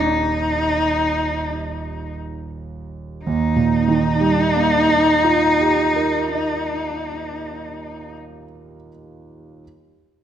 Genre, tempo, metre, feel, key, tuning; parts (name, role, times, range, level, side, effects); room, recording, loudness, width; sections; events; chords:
classical, impressionist duo for cello and grand piano; 51-59 BPM; 4/4; rubato; Eb major; A4 = 440 Hz
warm cello; melody; 0.0-8.1 s; Eb4; -19 LUFS; left 1 dB
dark concert grand piano; accompaniment; 0.0-9.6 s; Eb1 to Eb5; -23 LUFS; right 4 dB
wet scoring stage reverb, RT60 1.8 s; -16 LUFS; side -9 dB against mid
0.0-3.3 A section; 3.3-7.4 B section
slowing down 0.0-3.3
0.0 Ebadd9